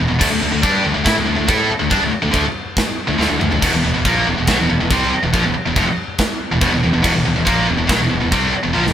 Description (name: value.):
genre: heavy metal.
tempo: 140 BPM.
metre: 4/4.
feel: straight.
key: E minor.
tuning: A4 = 436 Hz.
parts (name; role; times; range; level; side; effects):
scooped high-gain guitar; riff; 0.0-8.9 s; E2 to A4; -16 LUFS; equal; distortion.
fuzz fingered electric bass; bass; 0.0-8.9 s; E1 to A2; -22 LUFS; equal; overdrive.
tight metal drum kit; drums; 0.2-8.9 s; china cymbal, crash cymbal, kick drum, snare drum, splash cymbal, toms; -20 LUFS; equal; none.
room: moderate stone room reverb, RT60 1.0 s.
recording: band playing live in one room.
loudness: -14 LUFS.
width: side -10 dB against mid.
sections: 0.0-8.9 A section.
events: drum fill 3.2-3.6, 8.8.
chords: 0.2 D5; 3.6 E5.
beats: | 0.21 0.64 1.07 1.49 | 1.92 2.35 2.78 3.20 | 3.63 4.06 4.48 4.91 | 5.34 5.76 6.19 6.62 | 7.04 7.47 7.90 8.33 | 8.75.